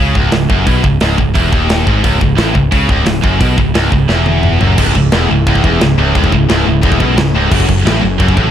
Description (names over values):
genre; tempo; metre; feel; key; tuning
heavy metal; 175 BPM; 4/4; straight; C# minor; A4 = 439 Hz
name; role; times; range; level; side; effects
heavy high-gain guitar; riff; 0.0-8.5 s; C#2 to C#3; -17 LUFS; left 11 dB; distortion
heavy high-gain guitar; riff; 0.0-8.5 s; C#2 to C#3; -15 LUFS; right 9 dB; distortion
modern bright picked electric bass; bass; 0.0-8.5 s; C#1 to C#2; -15 LUFS; equal; none
tight metal drum kit; drums; 0.2-8.5 s; china cymbal, crash cymbal, hi-hat, kick drum, snare drum, toms; -14 LUFS; equal; none
lush unison pad; sustained chords; 4.8-8.5 s; C#3 to F#4; -21 LUFS; left 1 dB; chorus
room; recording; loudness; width
studio reverb; dark, warm production; -9 LUFS; side -10 dB against mid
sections
0.0-4.8 A section; 4.8-8.5 B section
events
drum fill 4.1-4.8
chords
0.0 C#m; 7.5 F#5